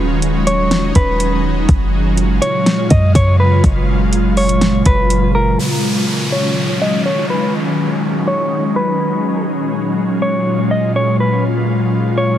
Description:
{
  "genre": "hip hop, atmospheric cloud-rap",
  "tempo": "123 BPM",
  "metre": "4/4",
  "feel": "half-time",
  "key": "Eb minor",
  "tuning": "A4 = 440 Hz",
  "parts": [
    { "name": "ethereal airy pad", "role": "sustained chords", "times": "0.0-12.4 s", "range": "Bb2 to F4", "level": "-16 LUFS", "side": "equal", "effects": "ensemble chorus, built-in reverb, sidechain pumping, low-pass filter" },
    { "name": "clean 808-style bass", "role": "bass", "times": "0.0-5.6 s", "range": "Eb1 to Gb2", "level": "-15 LUFS", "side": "equal", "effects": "none" },
    { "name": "smooth R&B drum kit", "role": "drums", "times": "0.2-5.2 s", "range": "hi-hat, kick drum, snare drum", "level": "-15 LUFS", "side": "equal", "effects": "overdrive" },
    { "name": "mellow electric guitar", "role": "melody", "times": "0.5-12.4 s", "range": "Bb4 to Eb5", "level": "-19 LUFS", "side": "equal", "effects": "low-pass filter, digital delay" },
    { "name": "downlifter", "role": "sound effects", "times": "5.6-9.5 s", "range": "none", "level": "-24 LUFS", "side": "equal", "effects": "none" }
  ],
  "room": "light reverb",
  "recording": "heavily compressed radio sound, multiband compression",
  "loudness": "-13 LUFS",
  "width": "side -11 dB against mid",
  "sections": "0.0-5.6 A section; 5.6-12.4 B section",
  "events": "filter sweep 5.6-12.4",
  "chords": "0.0 Ebm11; 1.7 Gbmaj9; 5.6 Ebm11; 9.5 Gbmaj9",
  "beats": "0.22 0.71 1.20 | 1.69 2.18 2.66 3.15 | 3.64 4.13 4.62 5.10 | 5.59 6.08 6.57 7.05 | 7.54 8.03 8.52 9.01 | 9.49 9.98 10.47 10.96 | 11.44 11.93"
}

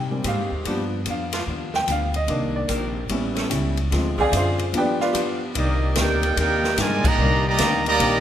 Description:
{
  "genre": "jazz, big band swing",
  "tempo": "147 BPM",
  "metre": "4/4",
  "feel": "swing 65% on 8ths",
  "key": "C minor",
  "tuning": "A4 = 440 Hz",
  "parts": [
    { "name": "archtop guitar, miked and amplified", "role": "accompaniment", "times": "0.0-8.2 s", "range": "G2 to F4", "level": "-30 LUFS", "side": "left 5 dB", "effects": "none" },
    { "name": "clear grand piano", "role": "accompaniment", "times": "0.0-5.5 s", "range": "Eb3 to Ab5", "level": "-24 LUFS", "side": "right 1 dB", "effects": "none" },
    { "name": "upright bass", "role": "bass", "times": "0.0-8.2 s", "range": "A1 to C3", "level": "-25 LUFS", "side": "equal", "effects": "none" },
    { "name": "bright saxophone section", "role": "sustained chords", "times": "0.2-6.7 s", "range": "Eb3 to Bb4", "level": "-32 LUFS", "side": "equal", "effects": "none" },
    { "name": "swinging big-band drum kit", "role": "drums", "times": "0.2-8.1 s", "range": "crash cymbal, hi-hat, kick drum, ride cymbal, snare drum", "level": "-28 LUFS", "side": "equal", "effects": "none" },
    { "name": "brilliant trumpet section", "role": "melody", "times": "5.6-8.2 s", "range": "Bb3 to Bb5", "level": "-21 LUFS", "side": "right 2 dB", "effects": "none" },
    { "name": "clear trombone section", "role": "second line", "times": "5.6-8.2 s", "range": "Eb3 to G4", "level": "-26 LUFS", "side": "right 2 dB", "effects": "none" }
  ],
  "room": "moderate concert hall reverb, RT60 1.8 s",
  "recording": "minimal, uncompressed stereo recording",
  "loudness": "-19 LUFS",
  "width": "side -10 dB against mid",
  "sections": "0.0-5.6 A section; 5.6-8.2 B section",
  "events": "grand piano solo 0.0-5.6; band accent 7.0",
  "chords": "0.0 Abmaj7; 0.7 G7; 2.3 Cm9; 3.1 A7; 3.9 Dm7b5; 4.7 G7; 5.6 Cm9",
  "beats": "0.25 | 0.65 1.06 1.47 1.88 | 2.29 2.69 3.10 3.51 | 3.92 4.33 4.74 5.14 | 5.55 5.96 6.37 6.77 | 7.18 7.59 8.00"
}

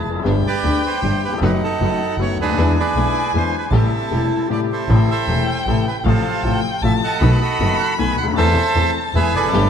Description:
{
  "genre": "tango",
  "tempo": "155 BPM",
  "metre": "3/4",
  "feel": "rubato",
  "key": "A minor",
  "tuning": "A4 = 444 Hz",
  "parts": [
    { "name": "mellow clarinet", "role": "second line", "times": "0.0-0.3, 4.1-4.9 s", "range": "E4 to G#4", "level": "-28 LUFS", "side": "left 1 dB", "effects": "none" },
    { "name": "warm violin", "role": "second line", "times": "0.0-9.7 s", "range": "F5 to B5", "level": "-26 LUFS", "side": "left 2 dB", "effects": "none" },
    { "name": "clear upright piano", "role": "accompaniment", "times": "0.0-9.7 s", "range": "E1 to A4", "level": "-21 LUFS", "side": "left 6 dB", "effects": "none" },
    { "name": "rich symphonic string section", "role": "stabs", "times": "0.0-4.7, 9.5-9.7 s", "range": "G3 to G4", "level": "-30 LUFS", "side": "right 4 dB", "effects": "none" },
    { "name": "rich double bass", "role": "bass", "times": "0.0-9.7 s", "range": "E1 to E2", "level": "-19 LUFS", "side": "right 1 dB", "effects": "none" },
    { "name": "bandoneon", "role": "melody", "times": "0.5-9.7 s", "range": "C4 to G#5", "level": "-21 LUFS", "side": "right 4 dB", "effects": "ping-pong delay" }
  ],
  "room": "moderate plate reverb, RT60 2.8 s",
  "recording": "dreamy mix soaked in reverb",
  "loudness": "-15 LUFS",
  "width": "side -8 dB against mid",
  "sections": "0.0-4.9 A section; 4.9-9.7 B section",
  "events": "break 4.5-4.9",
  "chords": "0.2 G; 1.4 B7/F#; 2.6 E7; 3.7 Am7; 4.9 Am; 6.1 F/A; 7.2 B7; 8.4 Am/E; 9.1 E",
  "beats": "| 0.25 0.64 1.03 | 1.42 1.80 2.19 | 2.57 2.95 3.34 | 3.72 4.11 4.50 | 4.89 5.28 5.67 | 6.05 6.44 6.83 | 7.21 7.59 7.98 | 8.36 8.75 9.14 | 9.53"
}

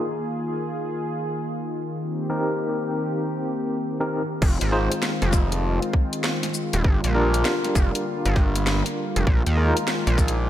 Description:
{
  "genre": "glitch hop",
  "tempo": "99 BPM",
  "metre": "4/4",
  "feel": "swing 64% on 16ths",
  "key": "F dorian",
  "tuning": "A4 = 441 Hz",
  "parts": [
    { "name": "warm analog pad", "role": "sustained chords", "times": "0.0-10.5 s", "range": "D3 to Ab4", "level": "-27 LUFS", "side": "equal", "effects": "chorus, sidechain pumping" },
    { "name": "barky tine electric piano", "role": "stabs", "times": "0.0-9.8 s", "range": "C4 to C5", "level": "-27 LUFS", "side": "equal", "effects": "overdrive, medium tremolo, sidechain pumping, low-pass filter, analog delay" },
    { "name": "gritty driven synth bass", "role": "bass", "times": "4.4-10.5 s", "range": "Eb1 to Eb2", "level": "-22 LUFS", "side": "equal", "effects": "tube saturation" },
    { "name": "drum and bass drum kit", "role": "drums", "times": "4.4-10.4 s", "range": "crash cymbal, hi-hat, shaker, snare drum", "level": "-29 LUFS", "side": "left 1 dB", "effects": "overdrive" },
    { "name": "electronic kick drum", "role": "drums", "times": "4.4-10.3 s", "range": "none", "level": "-20 LUFS", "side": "equal", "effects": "overdrive" }
  ],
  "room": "moderate lush hall reverb, RT60 1.8 s",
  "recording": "dreamy mix soaked in reverb",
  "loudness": "-21 LUFS",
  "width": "side -12 dB against mid",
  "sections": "0.0-4.4 A section; 4.4-10.5 B section",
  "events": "drop 4.4-10.5",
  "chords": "0.0 Bb7sus4; 2.0 Eb6; 4.4 Fm7; 6.8 Gm7; 9.3 Bb7sus4",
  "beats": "0.18 0.79 1.39 | 2.00 2.60 3.21 3.81 | 4.42 5.03 5.63 6.24 | 6.84 7.45 8.06 8.66 | 9.27 9.88 10.48"
}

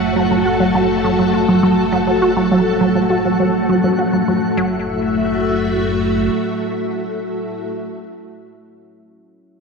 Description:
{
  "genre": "ambient, sequencer-driven space music",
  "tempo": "102 BPM",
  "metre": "4/4",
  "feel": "straight",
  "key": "F# minor",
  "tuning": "A4 = 441 Hz",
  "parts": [
    { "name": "string machine, full ensemble", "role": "sustained chords", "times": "0.0-7.7 s", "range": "A3 to E5", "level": "-17 LUFS", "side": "left 1 dB", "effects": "phaser, ensemble chorus" },
    { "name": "concert harp", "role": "arpeggios", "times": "0.0-7.0 s", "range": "F#3 to F#5", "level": "-38 LUFS", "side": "left 1 dB", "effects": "none" },
    { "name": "fat analog bass", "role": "bass", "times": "0.0-6.3 s", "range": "F#1", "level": "-29 LUFS", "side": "left 1 dB", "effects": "none" },
    { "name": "twinkling granular texture", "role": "texture", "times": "0.0-4.6 s", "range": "F#5", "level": "-31 LUFS", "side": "equal", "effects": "built-in reverb" },
    { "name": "resonant blip pluck", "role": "riff", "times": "0.2-4.8 s", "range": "F#3 to F#4", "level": "-17 LUFS", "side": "right 2 dB", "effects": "phaser, cassette tape, tape echo" }
  ],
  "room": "wet concert hall reverb, RT60 2.5 s",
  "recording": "dark, warm production",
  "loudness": "-14 LUFS",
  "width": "side -4 dB against mid",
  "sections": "0.0-4.6 A section; 4.6-6.9 B section",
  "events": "fade-out on analog synth bass 0.0-4.6",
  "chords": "0.0 F#m7",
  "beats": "0.46 1.04 1.63 | 2.22 2.81 3.40 3.98 | 4.57 5.16 5.75 6.34"
}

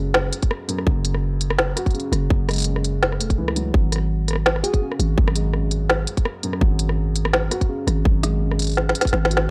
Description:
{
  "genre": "half-time drum and bass",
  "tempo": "167 BPM",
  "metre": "4/4",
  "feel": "swing 55% on 16ths, half-time",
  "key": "unclear",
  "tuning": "A4 = 441 Hz",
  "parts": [
    { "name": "felt-muted upright piano", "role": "arpeggios", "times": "0.0-9.5 s", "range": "F#2 to F#4", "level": "-31 LUFS", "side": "equal", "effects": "vintage 12-bit sampler grit, analog delay" },
    { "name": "growling 808-style bass", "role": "bass", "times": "0.0-9.5 s", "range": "E1 to C#2", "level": "-24 LUFS", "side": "equal", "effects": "none" },
    { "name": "organic electronic drum kit", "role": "drums", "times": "0.1-9.4 s", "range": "hi-hat, rim click, snare drum", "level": "-24 LUFS", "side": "equal", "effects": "small room ambience" },
    { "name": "electronic kick drum", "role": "drums", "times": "0.4-9.1 s", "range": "none", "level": "-21 LUFS", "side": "equal", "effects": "small room ambience" },
    { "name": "soft struck synth lead", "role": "melody", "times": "4.6-4.9 s", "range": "G#4", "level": "-35 LUFS", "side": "equal", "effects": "none" }
  ],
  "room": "digital ambience",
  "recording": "dry, gritty hardware recording",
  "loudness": "-21 LUFS",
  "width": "mono",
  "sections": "0.0-9.5 A section",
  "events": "drum fill 8.8-9.5",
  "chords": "0.0 F#m7; 3.7 G#7sus4",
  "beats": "0.15 0.51 | 0.87 1.23 1.58 1.94 | 2.30 2.66 3.02 3.38 | 3.74 4.10 4.46 4.82 | 5.18 5.54 5.89 6.25 | 6.61 6.97 7.33 7.69 | 8.05 8.41 8.77 9.13 | 9.49"
}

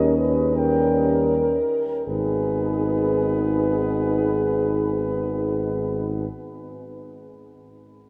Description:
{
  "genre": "classical, hymn-like piece for brass band",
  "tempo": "41 BPM",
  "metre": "4/4",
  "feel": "rubato",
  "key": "G# minor",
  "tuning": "A4 = 445 Hz",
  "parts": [
    { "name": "dark cornet", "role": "melody", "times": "0.0-6.3 s", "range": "B4 to G5", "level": "-35 LUFS", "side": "equal", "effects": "none" },
    { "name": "mellow French horn section", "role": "second line", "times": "0.0-6.3 s", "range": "G#4 to B4", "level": "-27 LUFS", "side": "equal", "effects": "none" },
    { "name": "clear trombone", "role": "accompaniment", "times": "0.0-6.3 s", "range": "G3 to B3", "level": "-34 LUFS", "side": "equal", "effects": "none" },
    { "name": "warm euphonium", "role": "accompaniment", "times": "0.0-6.3 s", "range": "C#4 to D#4", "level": "-29 LUFS", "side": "equal", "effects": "none" },
    { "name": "warm tuba", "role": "bass", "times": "0.0-6.3 s", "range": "G#1 to D#2", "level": "-29 LUFS", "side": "equal", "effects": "none" }
  ],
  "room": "wet cathedral reverb, RT60 6.2 s",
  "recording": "none",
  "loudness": "-22 LUFS",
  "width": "mono",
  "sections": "0.0-2.1 A section; 2.1-7.9 B section",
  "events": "slowing down 0.0-2.1",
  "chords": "0.0 D#7; 2.1 G#m",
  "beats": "0.55 | 2.08 3.50 4.98"
}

